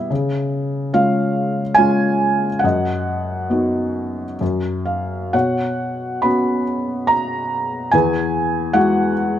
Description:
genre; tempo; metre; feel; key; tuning
classical, lyrical solo piano; 64-74 BPM; 3/4; rubato; B lydian; A4 = 440 Hz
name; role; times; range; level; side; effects
felt-muted upright piano; solo; 0.0-9.4 s; E2 to B5; -17 LUFS; equal; none
room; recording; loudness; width
light reverb; close, detailed microphones; -17 LUFS; side -10 dB against mid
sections
0.0-5.3 A section; 5.3-9.4 B section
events
none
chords
0.1 C#; 2.6 B/F#; 4.4 N.C.; 5.3 Bsus2; 7.9 Eadd9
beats
| 0.10 0.94 1.78 | 2.63 3.50 4.41 | 5.34 6.23 7.10 | 7.93 8.75

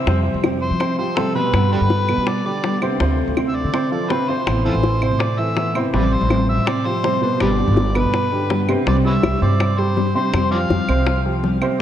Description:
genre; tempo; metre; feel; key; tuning
latin, Cuban son and guajira; 164 BPM; 4/4; straight; unclear; A4 = 440 Hz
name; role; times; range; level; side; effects
nylon-string guitar; accompaniment; 0.0-11.8 s; B2 to G4; -24 LUFS; left 3 dB; ensemble chorus
dark grand piano; arpeggios; 0.0-11.8 s; B2 to C5; -22 LUFS; right 3 dB; ping-pong delay
upright bass; bass; 0.1-11.6 s; G1 to G3; -21 LUFS; equal; none
bongos; percussion; 0.1-11.6 s; none; -26 LUFS; left 5 dB; none
claves; percussion; 0.4-11.8 s; none; -36 LUFS; right 4 dB; none
overdriven harmonica; melody; 0.6-11.2 s; D4 to F5; -24 LUFS; left 1 dB; ping-pong delay
room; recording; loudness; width
wet church reverb, RT60 3.1 s; dreamy mix soaked in reverb, cassette tape; -16 LUFS; side -10 dB against mid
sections
0.0-8.9 A section; 8.9-11.8 B section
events
none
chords
0.1 Fsus2; 1.5 G; 3.0 Dm7; 4.5 Amadd9; 5.9 Fadd9/A; 7.4 G; 8.9 Csus2; 10.3 Fsus2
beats
| 0.07 0.44 0.80 1.17 | 1.54 1.90 2.27 2.64 | 3.00 3.37 3.74 4.11 | 4.47 4.84 5.20 5.57 | 5.94 6.30 6.67 7.04 | 7.40 7.77 8.14 8.50 | 8.87 9.23 9.60 9.97 | 10.33 10.70 11.07 11.43 | 11.80

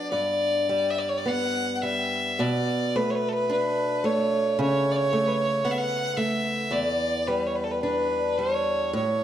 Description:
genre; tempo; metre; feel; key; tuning
celtic folk, Celtic slow air; 54 BPM; 4/4; rubato; unclear; A4 = 440 Hz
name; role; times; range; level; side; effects
bright fiddle; melody; 0.0-9.2 s; A4 to F#5; -25 LUFS; equal; none
picked old ladder-braced acoustic guitar; accompaniment; 0.0-9.2 s; E2 to D4; -26 LUFS; equal; none
room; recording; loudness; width
moderate recital hall reverb, RT60 1.3 s; dark, warm production; -23 LUFS; side -10 dB against mid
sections
0.0-9.2 A section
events
none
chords
0.1 G6; 2.4 Bm7; 4.6 Aadd9/C#; 6.7 Em7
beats
| 0.10 1.24 2.38 3.50 | 4.58 5.64 6.71 7.82 | 8.93

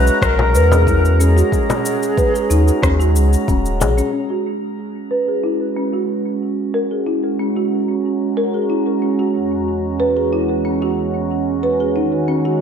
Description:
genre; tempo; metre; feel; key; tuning
organic downtempo; 92 BPM; 4/4; straight; C# dorian; A4 = 440 Hz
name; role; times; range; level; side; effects
breathy bright low ney; melody; 0.0-3.5 s; G#4 to B4; -21 LUFS; left 2 dB; vintage 12-bit sampler grit, ping-pong delay
warm analog pad; sustained chords; 0.0-12.6 s; E2 to A#5; -20 LUFS; right 3 dB; chorus, sidechain pumping
warm sub bass; bass; 0.0-4.0 s; D#1 to E2; -14 LUFS; equal; sidechain pumping
drifting glass-harmonics texture; texture; 0.0-4.1 s; A#5; -33 LUFS; equal; chorus, built-in reverb
electronic shaker and rim click; drums; 0.1-4.1 s; none; -25 LUFS; equal; overdrive
electronic kick drum; drums; 0.2-3.6 s; none; -20 LUFS; equal; overdrive
frame drum; percussion; 0.4-3.9 s; none; -23 LUFS; left 3 dB; none
folk marimba with soft mallets; arpeggios; 0.5-12.5 s; C#4 to B4; -20 LUFS; equal; low-pass filter, analog delay
room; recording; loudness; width
moderate plate reverb, RT60 1.5 s; dreamy mix soaked in reverb; -15 LUFS; side -7 dB against mid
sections
0.0-4.1 A section; 4.1-12.6 B section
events
filter sweep on marimba 0.0-4.1, 4.1-12.6; filter sweep on analog synth pad 4.1-12.6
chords
0.0 E; 1.5 B6 (rootless); 4.1 C#7(no3); 6.7 F#9; 9.4 E; 12.0 B6/D# (rootless)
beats
0.22 0.87 | 1.53 2.18 2.83 3.48 | 4.13 4.79 5.44 6.09 | 6.74 7.40 8.05 8.70 | 9.35 10.00 10.66 11.31 | 11.96

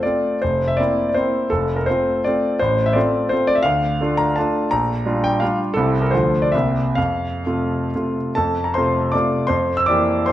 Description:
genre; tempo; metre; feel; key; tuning
classical, romantic triple-time dance for piano with dotted rhythms; 119-184 BPM; 3/4; rubato; F major; A4 = 441 Hz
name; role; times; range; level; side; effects
clear concert grand piano; solo; 0.0-10.3 s; F1 to E6; -17 LUFS; equal; none
room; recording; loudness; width
wet recital hall reverb, RT60 1.7 s; none; -17 LUFS; side -13 dB against mid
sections
0.0-8.4 A section; 8.4-10.3 A section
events
none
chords
0.4 C7/F; 1.5 F; 2.6 F/A; 3.7 Dm; 4.7 Gm7/Bb; 5.8 C; 6.1 Dm; 6.5 C7; 7.0 F; 9.5 C7/F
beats
0.05 | 0.42 0.79 1.16 | 1.51 1.87 2.25 | 2.60 2.96 3.32 | 3.65 4.00 4.36 | 4.71 5.06 5.41 | 5.76 6.12 6.53 | 6.96 7.44 7.92 | 8.36 8.75 9.13 | 9.49 9.88 10.26

